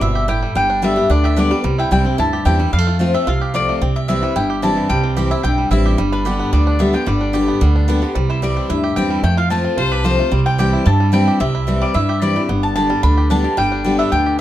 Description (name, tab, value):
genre	bluegrass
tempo	221 BPM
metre	4/4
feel	straight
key	C major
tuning	A4 = 440 Hz
part	bluegrass banjo	melody	0.0-14.4 s	D3 to G4	-25 LUFS	right 5 dB	plate reverb
part	mandolin	melody	0.0-14.4 s	B4 to B5	-21 LUFS	left 1 dB	plate reverb
part	picked steel-string acoustic guitar	accompaniment	0.0-14.4 s	F2 to G4	-19 LUFS	left 2 dB	none
part	upright bass	bass	0.0-14.4 s	G1 to G2	-18 LUFS	right 1 dB	none
part	clear fiddle	second line	9.8-10.4 s	B4 to C5	-22 LUFS	left 5 dB	none
room	light reverb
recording	dark, warm production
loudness	-14 LUFS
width	side -13 dB against mid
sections	0.0-14.4 A section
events	none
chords	0.0 C; 0.6 G; 1.6 C; 2.7 F; 3.8 C; 6.0 G; 8.2 C; 9.2 F; 10.3 C; 12.5 G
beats	0.01 0.29 | 0.56 0.83 1.10 1.37 | 1.64 1.91 2.19 2.46 | 2.73 3.00 3.27 3.54 | 3.81 4.08 4.36 4.63 | 4.90 5.17 5.44 5.71 | 5.98 6.25 6.53 6.80 | 7.07 7.34 7.61 7.88 | 8.15 8.42 8.69 8.96 | 9.24 9.51 9.78 10.05 | 10.32 10.59 10.86 11.13 | 11.41 11.68 11.95 12.22 | 12.49 12.76 13.04 13.31 | 13.58 13.85 14.12 14.39